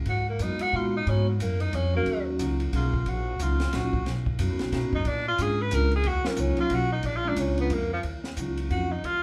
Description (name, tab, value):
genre	jazz, small-group swing and bop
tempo	181 BPM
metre	3/4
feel	swing 61% on 8ths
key	Eb minor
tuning	A4 = 437 Hz
part	upright bass	bass	0.0-9.2 s	Bb1 to B2	-30 LUFS	equal	none
part	clear tenor saxophone	melody	0.1-9.2 s	F3 to Cb5	-31 LUFS	equal	none
part	compact cocktail drum kit	drums	0.1-9.1 s	hi-hat, kick drum, ride cymbal, snare drum	-38 LUFS	equal	none
part	vibraphone with medium mallets	accompaniment	0.4-8.9 s	Gb3 to Ab4	-33 LUFS	equal	none
room	wet club reverb, RT60 0.8 s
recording	heard from further back in the room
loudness	-27 LUFS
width	mono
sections	0.0-8.0 A section; 8.0-9.2 A section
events	tenor saxophone solo 0.0-9.2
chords	0.1 Abm9; 2.1 Ebm9; 4.1 Bmaj7; 5.1 Bb7#9; 6.0 Ebm9; 7.0 Bb7#9; 8.0 Ebm9